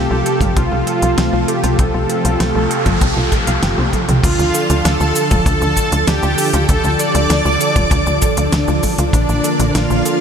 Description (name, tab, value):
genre	synthwave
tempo	98 BPM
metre	4/4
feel	straight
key	D minor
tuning	A4 = 440 Hz
part	soft supersaw	melody	0.0-10.2 s	D4 to D5	-20 LUFS	equal	tape echo
part	analog string pad	sustained chords	0.0-10.2 s	C3 to A4	-20 LUFS	right 1 dB	ensemble chorus, sidechain pumping
part	analog pluck	arpeggios	0.0-10.2 s	C4 to F5	-26 LUFS	right 2 dB	chorus, ping-pong delay
part	tight sequencer bass	bass	0.0-10.0 s	D1 to D2	-18 LUFS	equal	none
part	pop drum kit	drums	0.3-10.2 s	cabasa, crash cymbal, hi-hat, snare drum, toms	-22 LUFS	equal	none
part	kick drum	drums	0.4-9.3 s	none	-18 LUFS	equal	none
part	noise sweep	sound effects	2.2-4.2 s	none	-26 LUFS	equal	none
part	string machine, violins	second line	4.2-10.2 s	D5 to D6	-23 LUFS	equal	ensemble chorus, ping-pong delay
room	moderate huge ambient reverb, RT60 8.3 s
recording	dreamy mix soaked in reverb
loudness	-13 LUFS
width	side -7 dB against mid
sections	0.0-4.2 A section; 4.2-10.2 B section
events	noise sweep 2.2-4.2; drum fill 3.8-4.2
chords	0.0 F; 4.2 Dm; 9.1 Bbmaj7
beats	0.57 1.18 | 1.79 2.40 3.02 3.63 | 4.24 4.85 5.46 6.08 | 6.69 7.30 7.91 8.53 | 9.14 9.75